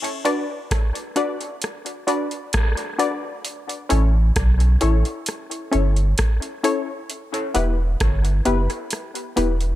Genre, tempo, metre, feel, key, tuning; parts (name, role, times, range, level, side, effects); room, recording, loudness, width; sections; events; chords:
dub reggae; 66 BPM; 4/4; straight; B minor; A4 = 439 Hz
booming analog drum machine; drums; 0.0-9.8 s; hi-hat, kick drum, rim click; -24 LUFS; equal
filtered dub chord stab; stabs; 0.2-9.6 s; B3 to D5; -24 LUFS; left 3 dB; chorus, dub echo
warm sub bass; bass; 3.9-9.8 s; E1 to B1; -18 LUFS; equal
light reverb; -19 LUFS; side -14 dB against mid
0.0-9.8 A section
break 0.0-3.4
0.0 Bm; 3.4 A; 7.1 Em